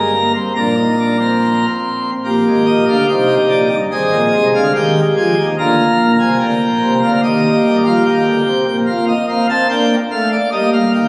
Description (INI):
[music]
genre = classical, baroque-style 4-part fugue for pipe organ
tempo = 73 BPM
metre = 4/4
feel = straight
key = Eb major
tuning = A4 = 439 Hz
[part]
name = pipe organ, plenum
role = solo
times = 0.0-11.1 s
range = G1 to Bb5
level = -14 LUFS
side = equal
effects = none
[sound]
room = wet church reverb, RT60 2.8 s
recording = recorded on a phone in the room, studio ambience, compression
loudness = -15 LUFS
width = mono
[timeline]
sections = 0.0-2.3 A section; 2.3-11.1 B section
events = none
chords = 0.0 Eb/G (rootless); 0.6 Bb; 2.3 Eb; 3.9 Ab; 5.6 Bb7; 7.2 Eb; 8.9 Bb; 10.5 Eb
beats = 0.56 1.41 | 2.26 3.09 3.92 4.75 | 5.58 6.40 7.23 8.05 | 8.88 9.70 10.53